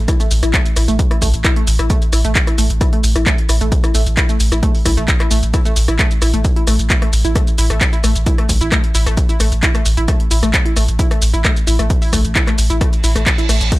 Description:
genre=driving peak-time techno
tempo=132 BPM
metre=4/4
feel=straight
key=unclear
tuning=A4 = 440 Hz
part: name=saturated sub bass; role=bass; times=0.0-13.7 s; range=A1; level=-16 LUFS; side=equal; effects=tube saturation, sidechain pumping, low-pass filter
part: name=impact and reverse cymbal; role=sound effects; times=0.0-1.0, 13.0-13.7 s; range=none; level=-27 LUFS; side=right 3 dB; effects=none
part: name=analog pluck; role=riff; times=0.1-13.8 s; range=A3 to E4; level=-22 LUFS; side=equal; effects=chorus, overdrive, sidechain pumping, analog delay
part: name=electronic kick drum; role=drums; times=0.1-13.8 s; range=none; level=-16 LUFS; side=equal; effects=none
part: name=punchy analog drum machine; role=drums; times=0.1-13.8 s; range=crash cymbal, handclaps, hi-hat, rim click, shaker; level=-19 LUFS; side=equal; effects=none
room=digital ambience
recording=dry, gritty hardware recording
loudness=-12 LUFS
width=side -18 dB against mid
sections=0.0-13.8 A section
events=impact 0.0-1.0; reverse cymbal 13.0-13.7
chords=0.0 A5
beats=0.08 0.54 | 0.99 1.45 1.90 2.35 | 2.81 3.26 3.72 4.17 | 4.63 5.08 5.54 5.99 | 6.45 6.90 7.36 7.81 | 8.26 8.72 9.17 9.63 | 10.08 10.54 10.99 11.45 | 11.90 12.36 12.81 13.26 | 13.72

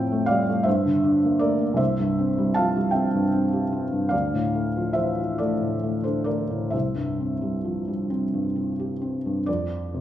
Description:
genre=classical, romantic nocturne for solo piano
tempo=43-54 BPM (dotted quarters)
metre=6/8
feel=rubato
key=unclear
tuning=A4 = 440 Hz
part: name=felt-muted upright piano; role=solo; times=0.0-10.0 s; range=C2 to A5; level=-22 LUFS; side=equal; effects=none
room=wet large studio reverb, RT60 1.0 s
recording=heard from further back in the room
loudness=-21 LUFS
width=side -12 dB against mid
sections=0.0-9.5 A section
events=none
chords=0.0 F/A; 0.7 Gm; 1.8 C; 4.1 Dm; 6.7 C; 9.5 F5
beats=0.66 | 1.80 2.93 | 4.12 5.40 | 6.74 8.11 | 9.47

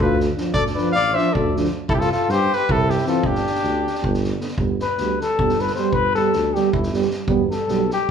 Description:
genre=balkan folk, Balkan brass band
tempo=311 BPM (eighths)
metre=7/8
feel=straight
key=G mixolydian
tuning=A4 = 440 Hz
part: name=warm cornet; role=melody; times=0.0-4.3 s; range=G4 to F5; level=-23 LUFS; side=equal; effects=none
part: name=dark trumpet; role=second line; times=0.0-8.1 s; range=D4 to D5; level=-23 LUFS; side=left 4 dB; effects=none
part: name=mellow tuba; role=bass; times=0.0-7.9 s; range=E1 to G2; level=-24 LUFS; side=right 1 dB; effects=none
part: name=street-band drum kit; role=percussion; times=0.0-8.0 s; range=kick drum, snare drum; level=-26 LUFS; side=right 1 dB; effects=none
part: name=dark euphonium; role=accompaniment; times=0.4-7.8 s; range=D3 to G3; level=-24 LUFS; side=right 7 dB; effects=none
part: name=mellow French horn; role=accompaniment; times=0.4-7.8 s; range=B3 to D4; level=-28 LUFS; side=left 2 dB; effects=none
room=wet large studio reverb, RT60 1.2 s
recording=band playing live in one room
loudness=-18 LUFS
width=side -7 dB against mid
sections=0.0-4.6 A section; 4.6-8.1 B section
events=trumpet solo 4.6-8.1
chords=0.0 Dm; 1.9 C; 3.2 G5; 4.6 G; 7.3 Em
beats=0.15 0.35 | 0.54 0.73 0.92 1.12 1.31 1.50 1.69 | 1.89 2.08 2.27 2.46 2.66 2.85 3.04 | 3.23 3.43 3.62 3.81 4.01 4.20 4.39 | 4.58 4.78 4.97 5.16 5.36 5.55 5.74 | 5.94 6.13 6.32 6.51 6.71 6.90 7.09 | 7.29 7.48 7.67 7.86 8.06

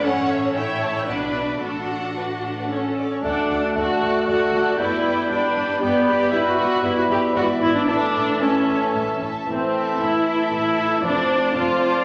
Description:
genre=quick classical-period movement for symphony orchestra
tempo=115 BPM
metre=3/4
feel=straight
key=D major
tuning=A4 = 440 Hz
part: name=warm studio violin section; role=melody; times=0.0-12.0 s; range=D5 to A5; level=-35 LUFS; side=equal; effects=none
part: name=rich studio violin section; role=second line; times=0.0-12.0 s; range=A4 to E5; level=-32 LUFS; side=equal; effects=none
part: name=rich studio viola section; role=accompaniment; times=0.0-12.0 s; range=B3 to C#5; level=-25 LUFS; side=equal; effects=none
part: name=warm studio cello section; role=bass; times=0.0-12.0 s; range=D2 to B2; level=-39 LUFS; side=equal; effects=none
part: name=warm studio double bass section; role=bass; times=0.0-12.0 s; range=F1 to D2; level=-40 LUFS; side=equal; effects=none
part: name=bright small flute group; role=second line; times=3.2-12.0 s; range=A5 to B5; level=-30 LUFS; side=equal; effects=none
part: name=mellow clarinet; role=second line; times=3.2-12.0 s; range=A4 to D5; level=-31 LUFS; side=equal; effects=none
part: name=warm cor anglais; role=second line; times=3.2-12.0 s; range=D5 to G5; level=-32 LUFS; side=equal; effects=none
part: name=warm bassoon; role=accompaniment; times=3.2-12.0 s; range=E3 to A3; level=-29 LUFS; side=equal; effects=none
part: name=mellow French horn section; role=sustained chords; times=3.2-12.0 s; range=A3 to G4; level=-29 LUFS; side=equal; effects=none
room=wet recital hall reverb, RT60 1.6 s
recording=none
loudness=-21 LUFS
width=mono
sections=0.0-3.2 A section; 3.2-12.0 B section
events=none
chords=0.0 A; 1.1 Bm; 1.6 D/A; 2.7 A; 3.2 D; 4.8 G; 6.3 Em/G; 7.4 E7; 7.9 A; 11.0 Dm7/F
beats=| 0.02 0.54 1.07 | 1.61 2.16 2.70 | 3.23 3.75 4.27 | 4.79 5.30 5.82 | 6.33 6.84 7.36 | 7.88 8.41 8.95 | 9.48 10.00 10.52 | 11.03 11.55

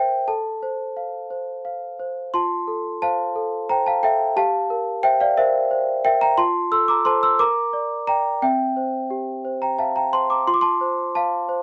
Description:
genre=classical, lullaby for celesta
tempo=59 BPM (dotted quarters)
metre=6/8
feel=straight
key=F major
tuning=A4 = 440 Hz
part: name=celesta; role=solo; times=0.0-11.6 s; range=C4 to E6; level=-18 LUFS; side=equal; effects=none
room=little or no reverb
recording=dry, close 1970s-style studio recording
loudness=-18 LUFS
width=side -24 dB against mid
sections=0.0-2.3 A section; 2.3-11.6 A section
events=none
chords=0.3 F/A; 2.3 F; 4.4 C7/G; 6.4 F; 7.4 Gm/Bb; 8.4 C; 10.5 F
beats=| 0.28 1.31 | 2.34 3.35 | 4.37 5.37 | 6.38 7.40 | 8.42 9.44 | 10.47 11.49

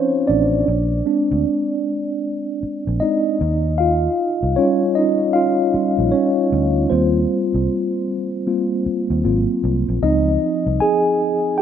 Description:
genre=R&B, neo-soul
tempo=77 BPM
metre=4/4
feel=swing 62% on 16ths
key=unclear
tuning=A4 = 440 Hz
part: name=mellow tine electric piano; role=accompaniment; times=0.0-11.6 s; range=F3 to Ab5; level=-17 LUFS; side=equal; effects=medium stereo tremolo
part: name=vintage muted fingered electric bass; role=bass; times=0.3-10.8 s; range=Ab1 to Eb2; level=-20 LUFS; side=equal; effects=none
room=moderate lush hall reverb, RT60 2.7 s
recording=rough home demo mix, nothing above 10.3 kHz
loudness=-16 LUFS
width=side -9 dB against mid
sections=0.0-11.6 A section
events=tine electric piano solo 0.0-11.6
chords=0.0 Dbmaj9; 0.7 Bb7; 3.4 Eb9; 6.9 Eb69/C; 9.2 Ab13; 10.0 Dbmaj9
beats=| 0.67 1.45 2.23 3.00 | 3.78 4.56 5.34 6.12 | 6.90 7.68 8.46 9.24 | 10.02 10.80 11.58

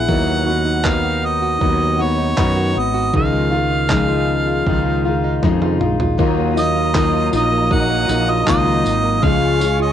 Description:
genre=acoustic pop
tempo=79 BPM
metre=4/4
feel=straight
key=unclear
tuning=A4 = 441 Hz
part: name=clear harmonica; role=melody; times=0.0-9.9 s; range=C#5 to F#5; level=-20 LUFS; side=right 2 dB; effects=cassette tape
part: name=fingerpicked steel-string acoustic guitar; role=accompaniment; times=0.0-9.9 s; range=C#3 to G#4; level=-20 LUFS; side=left 9 dB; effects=none
part: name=nylon-string guitar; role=arpeggios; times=0.0-9.9 s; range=D#3 to G#4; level=-23 LUFS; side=right 10 dB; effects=none
part: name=mellow fretless electric bass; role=bass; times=0.0-9.9 s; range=G#1 to F#2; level=-20 LUFS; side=right 1 dB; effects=none
part: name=dusty soul sampler-style drum kit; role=drums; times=0.1-9.8 s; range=handclaps, kick drum, snare drum, tambourine, toms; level=-21 LUFS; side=right 1 dB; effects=cassette tape
part: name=dark studio string section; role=sustained chords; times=6.2-9.9 s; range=F#3 to D#6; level=-28 LUFS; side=equal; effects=none
room=light reverb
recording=home recording on cassette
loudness=-14 LUFS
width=side -10 dB against mid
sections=0.0-6.2 A section; 6.2-9.9 B section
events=drum fill 5.4-6.2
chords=0.1 B/D#; 3.1 C#add9; 6.2 D#madd9; 9.2 C#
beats=| 0.09 0.85 1.61 2.38 | 3.14 3.90 4.66 5.42 | 6.19 6.95 7.71 8.47 | 9.23

